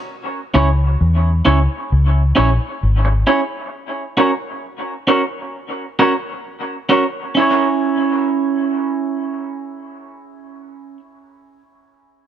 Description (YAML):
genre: reggae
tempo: 66 BPM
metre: 4/4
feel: straight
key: C# dorian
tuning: A4 = 440 Hz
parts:
  - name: clean electric guitar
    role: accompaniment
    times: 0.5-11.0 s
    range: C#4 to C#5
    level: -17 LUFS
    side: right 3 dB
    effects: dub echo
  - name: vintage muted fingered electric bass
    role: bass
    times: 0.6-3.2 s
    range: G#1 to E2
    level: -14 LUFS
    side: left 1 dB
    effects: none
room: light reverb, studio ambience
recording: echo-heavy mix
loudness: -14 LUFS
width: side -9 dB against mid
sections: 0.0-7.4 A section; 7.4-11.0 B section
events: none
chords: 0.1 C#m; 3.7 F#; 7.4 C#m